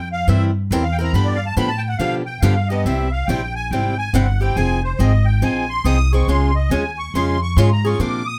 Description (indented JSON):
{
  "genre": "acoustic string swing (jazz manouche)",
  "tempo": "140 BPM",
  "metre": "4/4",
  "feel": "swing 63% on 8ths",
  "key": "unclear",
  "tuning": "A4 = 440 Hz",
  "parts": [
    { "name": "musette accordion", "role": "second line", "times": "0.0-8.4 s", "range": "C5 to Eb6", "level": "-27 LUFS", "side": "equal", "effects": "none" },
    { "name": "upright bass", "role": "bass", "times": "0.0-8.4 s", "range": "F1 to B2", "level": "-21 LUFS", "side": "equal", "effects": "none" },
    { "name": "picked swing-style acoustic guitar", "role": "accompaniment", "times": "0.3-8.2 s", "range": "C3 to Bb4", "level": "-24 LUFS", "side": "equal", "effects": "none" }
  ],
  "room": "light reverb",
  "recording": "none",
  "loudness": "-18 LUFS",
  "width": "mono",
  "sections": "0.0-8.4 A section",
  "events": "accordion solo 0.0-8.4",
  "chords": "0.0 C7; 1.1 G7; 2.9 C; 4.6 Fm7; 6.3 Db",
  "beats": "0.27 0.70 | 1.13 1.56 1.99 2.42 | 2.85 3.28 3.71 4.14 | 4.57 5.00 5.42 5.85 | 6.28 6.71 7.14 7.57 | 8.00"
}